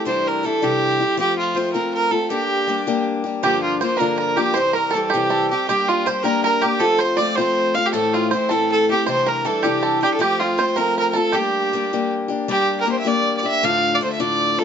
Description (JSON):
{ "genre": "celtic folk, Celtic jig", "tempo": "106 BPM (dotted quarters)", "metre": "6/8", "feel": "straight", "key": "G dorian", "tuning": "A4 = 440 Hz", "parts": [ { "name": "clear fiddle", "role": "melody", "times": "0.0-14.6 s", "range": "F4 to F5", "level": "-19 LUFS", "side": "right 2 dB", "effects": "none" }, { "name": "picked steel-string acoustic guitar", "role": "accompaniment", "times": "0.0-14.6 s", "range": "D2 to G4", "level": "-22 LUFS", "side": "left 5 dB", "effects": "none" }, { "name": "bluegrass banjo", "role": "second line", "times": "3.4-12.1 s", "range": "F4 to F5", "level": "-24 LUFS", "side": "right 5 dB", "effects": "none" } ], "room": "light reverb", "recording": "nothing above 7.7 kHz", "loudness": "-17 LUFS", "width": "side -8 dB against mid", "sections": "0.0-3.4 A section; 3.4-12.5 A section; 12.5-14.6 B section", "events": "none", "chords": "0.1 Cadd9; 1.2 F; 2.3 Gm; 3.4 Gm7; 4.5 C; 5.7 Gm; 6.8 F; 7.9 Am; 9.1 Cadd9; 10.2 F; 11.3 Gm; 13.6 Dm", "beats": "| 0.05 0.61 | 1.18 1.74 | 2.30 2.86 | 3.42 3.98 | 4.55 5.11 | 5.67 6.24 | 6.80 7.37 | 7.93 8.50 | 9.06 9.63 | 10.20 10.77 | 11.34 11.91 | 12.48 13.05 | 13.62 14.18" }